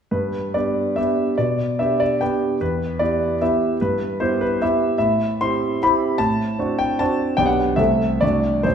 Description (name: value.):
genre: classical, romantic triple-time dance for piano with dotted rhythms.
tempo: 133-162 BPM.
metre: 3/4.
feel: rubato.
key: G major.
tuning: A4 = 440 Hz.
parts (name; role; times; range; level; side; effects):
warm concert grand piano; solo; 0.1-8.7 s; B1 to C6; -18 LUFS; equal; none.
room: wet recital hall reverb, RT60 1.6 s.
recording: minimal, uncompressed stereo recording.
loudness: -18 LUFS.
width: side -8 dB against mid.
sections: 0.1-8.7 A section.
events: none.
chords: 0.1 G; 1.4 G/B; 2.6 Em; 3.8 Em/G; 5.0 Am7; 6.2 D7/A; 7.4 G/B; 7.8 Am/C; 8.2 D7/C.